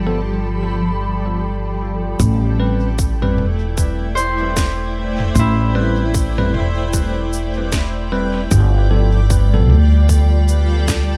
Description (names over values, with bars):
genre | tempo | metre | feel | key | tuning
ambient dub | 76 BPM | 4/4 | swing 60% on 16ths | A minor | A4 = 440 Hz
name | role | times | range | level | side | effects
granular cloud pad | sustained chords | 0.0-11.2 s | F3 to G5 | -26 LUFS | equal | built-in reverb
upright bass | bass | 0.0-11.2 s | E1 to D2 | -18 LUFS | equal | none
backwards swelling texture | texture | 0.0-2.2 s | B5 | -34 LUFS | equal | built-in reverb
bell-like tine electric piano | stabs | 0.1-9.8 s | F3 to B4 | -27 LUFS | equal | dub echo
electronic kick drum | drums | 2.2-11.1 s | none | -22 LUFS | equal | none
organic electronic drum kit | drums | 2.2-11.1 s | cabasa, snare drum, toms | -27 LUFS | equal | none
Celtic harp | arpeggios | 4.2-8.8 s | E4 to C5 | -28 LUFS | equal | dub echo
room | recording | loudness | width
light reverb | none | -17 LUFS | mono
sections
0.0-2.2 A section; 2.2-11.2 B section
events
none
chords
0.0 G9; 2.2 Am9; 8.5 G9